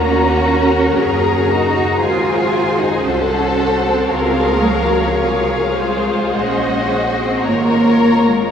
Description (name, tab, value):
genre	classical, slow romantic movement for string orchestra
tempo	50-58 BPM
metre	4/4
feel	rubato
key	Db major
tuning	A4 = 440 Hz
part	rich studio violin section	melody	0.0-8.5 s	F4 to Bb4	-20 LUFS	left 4 dB	none
part	warm symphonic violin section	second line	0.0-8.5 s	Gb4 to Bb5	-20 LUFS	left 2 dB	none
part	warm symphonic viola section	accompaniment	0.0-8.5 s	F4 to Db5	-20 LUFS	right 1 dB	none
part	rich symphonic cello section	bass	0.0-8.5 s	F3 to F4	-18 LUFS	right 2 dB	none
part	rich symphonic double bass section	bass	0.0-8.5 s	Gb1 to Eb2	-23 LUFS	right 2 dB	none
room	wet cathedral reverb, RT60 5.0 s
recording	small room ambience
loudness	-13 LUFS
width	side -8 dB against mid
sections	0.0-8.5 A section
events	none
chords	0.0 Ebm7; 2.0 Ab7b9; 4.1 Db; 6.4 Gb/Bb